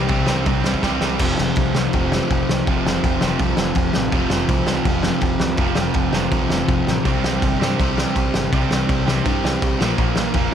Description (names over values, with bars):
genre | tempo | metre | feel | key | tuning
punk rock | 164 BPM | 4/4 | straight | unclear | A4 = 441 Hz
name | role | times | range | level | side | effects
crunchy overdriven guitar | riff | 0.0-10.5 s | F2 to C4 | -23 LUFS | right 9 dB | none
sludgy distorted guitar | riff | 0.0-10.5 s | F2 to C4 | -23 LUFS | left 9 dB | overdrive
growling picked electric bass | bass | 0.0-10.5 s | F1 to G2 | -26 LUFS | equal | overdrive
loose indie drum kit | drums | 0.1-10.4 s | crash cymbal, kick drum, snare drum | -21 LUFS | equal | none
room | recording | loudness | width
light reverb | none | -17 LUFS | side -8 dB against mid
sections
0.0-1.2 A section; 1.2-10.5 B section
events
drum fill 0.8-1.2, 6.9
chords
0.0 C5; 1.2 F5; 7.1 C5; 9.8 Bb5